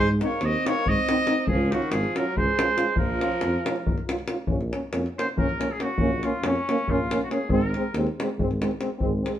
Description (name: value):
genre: balkan folk, Balkan brass band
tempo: 278 BPM (eighths)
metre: 7/8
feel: straight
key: Bb minor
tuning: A4 = 439 Hz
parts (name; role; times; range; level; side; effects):
- warm trumpet; melody; 0.0-8.0 s; Db4 to Eb5; -27 LUFS; right 1 dB; none
- warm alto saxophone; second line; 0.0-4.1 s; Eb3 to C4; -29 LUFS; right 2 dB; none
- mellow tuba; bass; 0.0-9.3 s; Ab1 to Ab2; -28 LUFS; right 1 dB; none
- warm French horn; accompaniment; 0.2-9.3 s; C4 to F4; -30 LUFS; left 3 dB; none
- warm euphonium; accompaniment; 0.2-9.3 s; Ab3 to Db4; -31 LUFS; right 5 dB; none
- davul; percussion; 0.2-9.4 s; none; -28 LUFS; left 2 dB; none
room: wet studio reverb, RT60 0.8 s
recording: band playing live in one room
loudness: -22 LUFS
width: side -11 dB against mid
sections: 0.0-4.5 A section; 4.5-9.4 B section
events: trumpet solo 4.5-9.4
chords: 0.0 Ab; 1.5 Db; 3.0 Bbm; 7.5 Ab